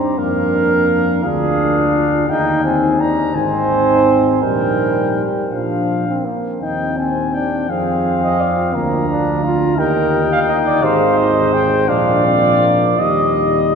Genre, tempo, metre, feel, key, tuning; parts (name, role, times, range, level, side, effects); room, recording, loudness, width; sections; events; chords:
classical, brass quintet; 56 BPM (dotted quarters); 6/8; rubato; Eb major; A4 = 442 Hz
mellow trumpet; melody; 0.0-13.8 s; Eb5 to Bb5; -22 LUFS; left 5 dB
mellow flugelhorn; second line; 0.0-13.8 s; Ab4 to F5; -18 LUFS; right 5 dB
clear trombone; accompaniment; 0.0-13.8 s; F3 to F4; -20 LUFS; equal
mellow French horn; accompaniment; 0.0-13.8 s; C4 to Ab4; -22 LUFS; left 4 dB
mellow tuba; bass; 0.0-13.8 s; Ab1 to G2; -20 LUFS; equal
wet cathedral reverb, RT60 4.5 s; recorded in a church or concert hall; -13 LUFS; side -6 dB against mid
0.0-13.8 A section
0.2 Bb7/F; 2.3 Eb; 3.4 Ab; 4.4 Eb/Bb; 5.5 Bb; 6.6 Cm/Eb; 7.7 Fm; 8.8 Bb/D; 9.8 Eb; 10.8 Ab; 11.9 Bb; 13.0 Eb